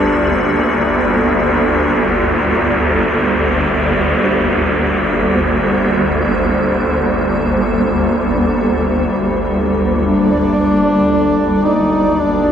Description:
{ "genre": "dark ambient drone", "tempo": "free time", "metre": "none", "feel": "none", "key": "G minor", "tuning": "A4 = 440 Hz", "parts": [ { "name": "dark duduk", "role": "melody", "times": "0.0-0.7, 10.0-12.5 s", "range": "D4 to Eb4", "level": "-18 LUFS", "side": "left 1 dB", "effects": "tape echo" }, { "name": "granular cloud pad", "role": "sustained chords", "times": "0.0-12.5 s", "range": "G3 to D5", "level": "-17 LUFS", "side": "equal", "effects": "built-in reverb" }, { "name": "swarming drone", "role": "drone", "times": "0.0-12.5 s", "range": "G1 to D2", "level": "-15 LUFS", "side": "equal", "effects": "built-in reverb" }, { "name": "bubbling stepped-filter texture", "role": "texture", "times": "10.0-12.5 s", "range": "D5", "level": "-21 LUFS", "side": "right 4 dB", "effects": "chorus, built-in reverb" } ], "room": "wet huge ambient reverb, RT60 7.7 s", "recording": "none", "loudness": "-12 LUFS", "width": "side -8 dB against mid", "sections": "0.0-10.0 A section; 10.0-12.5 B section", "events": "none", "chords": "0.0 Gm" }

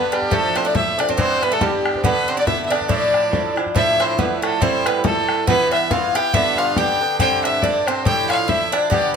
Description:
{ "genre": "celtic folk, Celtic polka", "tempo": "140 BPM", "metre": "2/4", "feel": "swing 57% on 8ths", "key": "D dorian", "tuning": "A4 = 444 Hz", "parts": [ { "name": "clear fiddle", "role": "melody", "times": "0.0-9.1 s", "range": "G4 to G5", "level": "-20 LUFS", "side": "equal", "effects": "none" }, { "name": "Irish bouzouki", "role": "second line", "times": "0.0-9.1 s", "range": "G3 to G4", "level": "-25 LUFS", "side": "right 4 dB", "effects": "none" }, { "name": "wooden flute", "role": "second line", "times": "0.0-9.2 s", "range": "G4 to G5", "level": "-26 LUFS", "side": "left 8 dB", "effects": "none" }, { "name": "Irish bouzouki", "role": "accompaniment", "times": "0.0-9.2 s", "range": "G2 to G4", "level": "-23 LUFS", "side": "right 3 dB", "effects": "none" }, { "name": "bodhran", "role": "percussion", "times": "0.1-9.0 s", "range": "none", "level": "-23 LUFS", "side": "left 2 dB", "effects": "none" } ], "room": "moderate small room reverb, RT60 0.5 s", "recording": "none", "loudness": "-16 LUFS", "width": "side -6 dB against mid", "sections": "0.0-3.8 A section; 3.8-9.2 B section", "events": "none", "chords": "0.3 Dm; 1.2 Em7; 2.0 G; 2.9 Dmadd9; 4.6 Am7; 5.5 Em/G; 6.3 G; 7.2 Gsus4; 8.1 Dmadd9" }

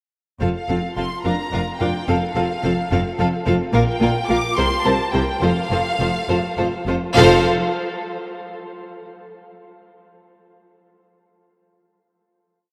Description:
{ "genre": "quick classical-period movement for string orchestra", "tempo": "71 BPM (dotted quarters)", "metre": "6/8", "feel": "straight", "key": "F major", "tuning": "A4 = 444 Hz", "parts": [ { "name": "clear studio violin section", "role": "second line", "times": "0.4-7.5 s", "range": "A4 to F5", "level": "-26 LUFS", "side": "equal", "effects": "none" }, { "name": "rich studio viola section", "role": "accompaniment", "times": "0.4-7.5 s", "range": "F3 to F4", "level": "-26 LUFS", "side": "equal", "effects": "none" }, { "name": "rich studio cello section", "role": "bass", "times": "0.4-7.5 s", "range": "F2 to C3", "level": "-27 LUFS", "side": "equal", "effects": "none" }, { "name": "rich studio double bass section", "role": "bass", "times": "0.4-7.5 s", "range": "F1 to C2", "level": "-27 LUFS", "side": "equal", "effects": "none" }, { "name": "rich studio violin section", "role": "melody", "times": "0.5-7.5 s", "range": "F5 to D6", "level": "-26 LUFS", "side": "equal", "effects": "none" } ], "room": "wet cathedral reverb, RT60 4.7 s", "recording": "in a vast, echoing space", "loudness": "-20 LUFS", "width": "mono", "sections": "0.4-7.2 A section; 7.2-8.9 final chord", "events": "none", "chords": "0.4 F5; 1.2 Bb/F; 2.1 F; 3.7 Bb5; 4.6 C7; 5.4 F; 7.2 N.C." }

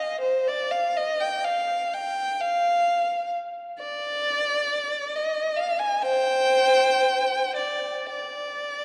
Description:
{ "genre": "classical, free, expressive piece for unaccompanied violin", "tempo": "50-70 BPM", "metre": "4/4", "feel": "rubato", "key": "unclear", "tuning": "A4 = 440 Hz", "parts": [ { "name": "warm violin", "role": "solo", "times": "0.0-8.8 s", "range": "C5 to Ab5", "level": "-25 LUFS", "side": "equal", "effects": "none" } ], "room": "wet church reverb, RT60 3.3 s", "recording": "dark, warm production", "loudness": "-25 LUFS", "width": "mono", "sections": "0.0-8.8 A section", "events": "none", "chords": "none" }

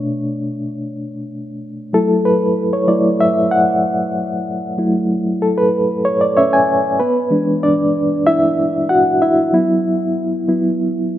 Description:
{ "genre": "soul", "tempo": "95 BPM", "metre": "4/4", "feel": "straight", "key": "unclear", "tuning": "A4 = 440 Hz", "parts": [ { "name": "mellow reed electric piano", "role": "solo", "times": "0.0-11.2 s", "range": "B2 to G#5", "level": "-14 LUFS", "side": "equal", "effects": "fast tremolo" } ], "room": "moderate lush hall reverb, RT60 2.8 s", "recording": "rough home demo mix", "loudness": "-14 LUFS", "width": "side -12 dB against mid", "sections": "0.0-7.0 A section; 7.0-11.2 B section", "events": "reed electric piano solo 0.0-7.0, 7.0-11.2", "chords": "0.0 Bm9; 1.9 F#m7; 7.0 E9; 9.5 F#7sus4" }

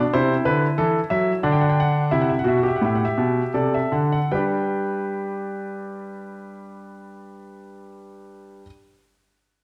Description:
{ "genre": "classical, baroque-style 3-part fugue for grand piano", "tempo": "76-96 BPM", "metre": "4/4", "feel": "straight", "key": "G major", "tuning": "A4 = 441 Hz", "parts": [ { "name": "warm concert grand piano", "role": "solo", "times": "0.0-8.6 s", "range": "A2 to G5", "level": "-23 LUFS", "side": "equal", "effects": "none" } ], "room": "wet recital hall reverb, RT60 1.2 s", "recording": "dark, warm production", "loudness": "-22 LUFS", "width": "mono", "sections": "0.0-4.3 A section; 4.3-7.5 B section", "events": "slowing down 0.0-4.3", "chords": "0.1 Am/C; 1.4 D7; 4.3 G" }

